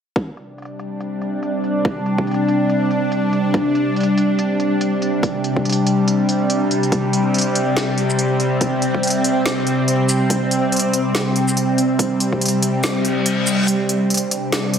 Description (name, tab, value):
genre	deep dubstep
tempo	142 BPM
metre	4/4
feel	swing 58% on 16ths, half-time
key	unclear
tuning	A4 = 440 Hz
part	bowed-like drone	sustained chords	0.7-14.8 s	C3 to D4	-17 LUFS	equal	built-in reverb, phaser
part	deep house drum kit	drums	0.2-14.8 s	hi-hat, shaker, snare drum	-23 LUFS	equal	low-pass filter on hats, studio reverb, low-pass filter on snare, low-pass filter on perc
part	electronic kick drum	drums	0.2-12.4 s	none	-21 LUFS	equal	high-pass filter on kick, studio reverb
part	reverse cymbal and riser	sound effects	13.0-14.8 s	none	-26 LUFS	left 3 dB	none
room	wet lush hall reverb, RT60 1.9 s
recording	heavily compressed radio sound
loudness	-16 LUFS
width	side -7 dB against mid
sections	0.2-13.7 A section; 13.7-14.8 B section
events	filter sweep on drum 0.2-13.7; kick drops out 12.8-13.7; reverse cymbal 13.0-13.7; build-up 13.7-14.8; riser 13.7-14.8; filter sweep on synth drone 13.7-14.8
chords	0.2 C5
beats	| 0.16 0.58 1.01 1.43 | 1.85 2.27 2.70 3.12 | 3.54 3.96 4.39 4.81 | 5.23 5.65 6.08 6.50 | 6.92 7.34 7.77 8.19 | 8.61 9.03 9.46 9.88 | 10.30 10.72 11.15 11.57 | 11.99 12.41 12.84 13.26 | 13.68 14.10 14.53